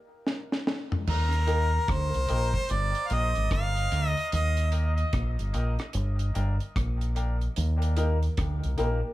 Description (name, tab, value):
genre	dub reggae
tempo	74 BPM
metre	4/4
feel	swing 62% on 16ths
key	Eb major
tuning	A4 = 443 Hz
part	deep reggae drum kit	drums	0.3-9.0 s	crash cymbal, hi-hat, kick drum, rim click, snare drum, toms	-32 LUFS	equal	none
part	bright harmonica	melody	1.1-4.7 s	Bb4 to F5	-31 LUFS	equal	dub echo
part	deep dub fingered electric bass	bass	1.1-9.0 s	G1 to Eb2	-26 LUFS	equal	none
part	warm baby grand piano	stabs	1.5-9.1 s	Bb3 to Bb4	-35 LUFS	left 2 dB	high-pass filter, dub echo
room	studio reverb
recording	echo-heavy mix, small room ambience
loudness	-25 LUFS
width	side -16 dB against mid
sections	0.0-1.1 A section; 1.1-9.1 B section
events	break 0.0-1.1; stop 0.0-1.1; filter sweep 0.0-1.1; filter sweep on grand piano 0.0-7.6; drum fill 0.3-1.1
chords	0.0 N.C.; 1.1 Eb; 2.7 Gm; 4.3 Eb; 5.9 Gm; 7.6 Eb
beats	0.26 | 1.07 1.88 2.69 3.51 | 4.32 5.13 5.94 6.75 | 7.57 8.38